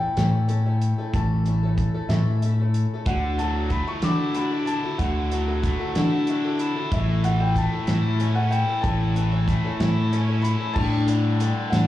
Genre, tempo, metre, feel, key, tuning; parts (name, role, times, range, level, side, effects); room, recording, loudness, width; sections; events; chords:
folk rock and heartland rock; 62 BPM (dotted quarters); 6/8; straight; A4 = 440 Hz
felt-muted upright piano; melody; 0.0-11.9 s; E5 to D6; -31 LUFS; left 1 dB; slapback echo, tape echo
picked swing-style acoustic guitar; accompaniment; 0.0-11.9 s; A2 to A4; -30 LUFS; left 4 dB; slapback echo
fingered electric bass; bass; 0.2-11.9 s; A1 to D3; -22 LUFS; equal
damped 70s drum kit; drums; 0.2-11.9 s; crash cymbal, hi-hat, kick drum, snare drum; -28 LUFS; equal
biting overdriven guitar; riff; 3.1-11.9 s; A2 to E4; -30 LUFS; equal; slapback echo
light reverb, studio reverb; live gig heard through the venue's PA, club ambience, small room reverb; -20 LUFS; side -14 dB against mid
0.0-10.8 A section; 10.8-11.9 B section
0.0 A; 3.1 Dadd9; 6.9 A; 10.8 A7sus4